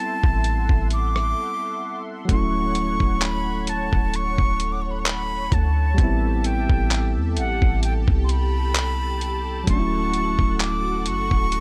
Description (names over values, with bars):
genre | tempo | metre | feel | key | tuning
contemporary R&B | 65 BPM | 4/4 | swing 54% on 16ths | D major | A4 = 440 Hz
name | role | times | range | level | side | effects
breathy silver concert flute | melody | 0.0-11.6 s | F#5 to D6 | -29 LUFS | equal | delay
bell-like tine electric piano | accompaniment | 0.0-11.6 s | F#3 to E4 | -31 LUFS | equal | none
warm analog pad | sustained chords | 0.0-11.6 s | F#4 to C#6 | -36 LUFS | equal | chorus
warm 808-style bass | bass | 0.2-11.6 s | D1 to E2 | -26 LUFS | equal | none
dusty soul sampler-style drum kit | drums | 0.2-11.6 s | handclaps, hi-hat, kick drum, rim click | -24 LUFS | equal | none
room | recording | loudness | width
little or no reverb | none | -22 LUFS | mono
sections
0.0-11.6 A section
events
break 1.4-2.3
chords
0.0 Am7; 2.3 Dmaj7; 6.0 Am7; 9.7 Dmaj7